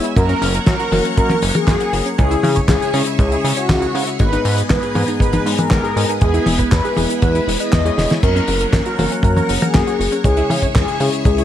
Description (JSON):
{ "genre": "italo disco", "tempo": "119 BPM", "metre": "4/4", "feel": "straight", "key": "unclear", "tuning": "A4 = 436 Hz", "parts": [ { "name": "mellow synth brass", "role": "melody", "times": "0.0-11.4 s", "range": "F#4 to D#5", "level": "-21 LUFS", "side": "left 1 dB", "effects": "chorus, cassette tape, ping-pong delay" }, { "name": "phased string machine", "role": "sustained chords", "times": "0.0-11.4 s", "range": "B3 to E6", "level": "-25 LUFS", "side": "right 1 dB", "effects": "ensemble chorus, phaser" }, { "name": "wide unison pluck", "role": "arpeggios", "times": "0.0-11.4 s", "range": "F#3 to C#5", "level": "-26 LUFS", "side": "right 2 dB", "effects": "ping-pong delay" }, { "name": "bell-like tine electric piano", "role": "stabs", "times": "0.0-11.4 s", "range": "G#2 to C#5", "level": "-23 LUFS", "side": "left 2 dB", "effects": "none" }, { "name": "damped 70s drum kit", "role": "drums", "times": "0.0-11.4 s", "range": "crash cymbal, handclaps, hi-hat, snare drum, toms", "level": "-21 LUFS", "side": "left 1 dB", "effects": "studio reverb, gated reverb" }, { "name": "chorused synth bass", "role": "bass", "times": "0.2-11.4 s", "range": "E1 to C#3", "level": "-20 LUFS", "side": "equal", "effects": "tube saturation" }, { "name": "kick drum", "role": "drums", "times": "0.2-11.4 s", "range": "none", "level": "-17 LUFS", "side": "equal", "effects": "studio reverb" } ], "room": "light reverb, small room ambience", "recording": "vinyl crackle", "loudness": "-14 LUFS", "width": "side -11 dB against mid", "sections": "0.0-11.4 A section", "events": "drum fill 8.0", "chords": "0.2 F#; 2.2 C#m; 4.2 G#m; 6.2 E; 8.2 F#; 10.2 C#m", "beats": "| 0.17 0.67 1.17 1.68 | 2.18 2.69 3.19 3.69 | 4.20 4.70 5.21 5.71 | 6.21 6.72 7.22 7.73 | 8.23 8.74 9.24 9.74 | 10.25 10.75 11.26" }